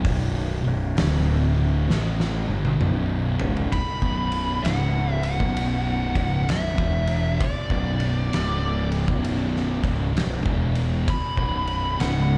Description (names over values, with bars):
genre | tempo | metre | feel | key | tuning
stoner and doom metal | 65 BPM | 4/4 | swing 64% on 8ths | B minor | A4 = 440 Hz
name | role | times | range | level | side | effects
thick fuzz guitar | riff | 0.0-12.4 s | B1 to A3 | -28 LUFS | equal | distortion
fuzz fingered electric bass | bass | 0.0-12.4 s | B0 to A1 | -28 LUFS | equal | overdrive
oversized low-tuned drum kit | drums | 0.0-12.3 s | hi-hat, kick drum, ride cymbal, snare drum, toms | -30 LUFS | equal | none
fuzz lead guitar | melody | 3.7-12.4 s | D5 to B5 | -32 LUFS | equal | distortion, tape echo
room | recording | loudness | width
light reverb, studio reverb | live gig heard through the venue's PA, cassette tape, club reverb | -24 LUFS | mono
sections
0.0-3.7 A section; 3.7-12.4 B section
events
drum fill 1.9-3.7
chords
0.0 B5; 1.0 D5; 1.9 Bm; 3.7 B5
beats
| 0.04 0.97 1.89 2.81 | 3.73 4.65 5.57 6.49 | 7.41 8.32 9.24 10.16 | 11.07 11.99